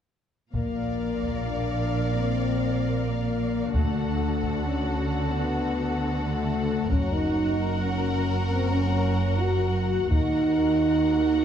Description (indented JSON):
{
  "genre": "cinematic, epic orchestral film score",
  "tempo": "free time",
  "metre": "none",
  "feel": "none",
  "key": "unclear",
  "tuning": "A4 = 440 Hz",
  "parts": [
    { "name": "rich symphonic violin section", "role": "melody", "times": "0.5-11.4 s", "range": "F5 to F#5", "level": "-36 LUFS", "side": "left 5 dB", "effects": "none" },
    { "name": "clear studio violin section", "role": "second line", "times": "0.5-11.4 s", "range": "A4 to D5", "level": "-35 LUFS", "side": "left 3 dB", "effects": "none" },
    { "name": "rich symphonic viola section", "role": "accompaniment", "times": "0.5-11.4 s", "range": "F#4 to Bb4", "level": "-36 LUFS", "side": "right 2 dB", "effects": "none" },
    { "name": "dark French horn section", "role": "sustained chords", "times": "0.5-11.4 s", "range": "A3 to Gb4", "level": "-26 LUFS", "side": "left 1 dB", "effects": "none" },
    { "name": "dark symphonic cello section", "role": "bass", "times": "0.5-11.4 s", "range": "Eb2 to D3", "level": "-30 LUFS", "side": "right 2 dB", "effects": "none" },
    { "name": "rich symphonic double bass section", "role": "bass", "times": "0.5-11.4 s", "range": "Gb1 to Eb2", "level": "-30 LUFS", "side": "right 3 dB", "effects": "none" },
    { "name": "taiko ensemble", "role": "drums", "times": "0.5-11.0 s", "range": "none", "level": "-28 LUFS", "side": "equal", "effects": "none" }
  ],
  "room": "wet scoring stage reverb, RT60 1.4 s",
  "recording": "dark, warm production",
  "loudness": "-23 LUFS",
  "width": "side -9 dB against mid",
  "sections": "0.5-11.4 A section",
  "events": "none",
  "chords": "0.5 Bb; 3.7 D; 6.9 Gb; 10.1 Ebm",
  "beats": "free time"
}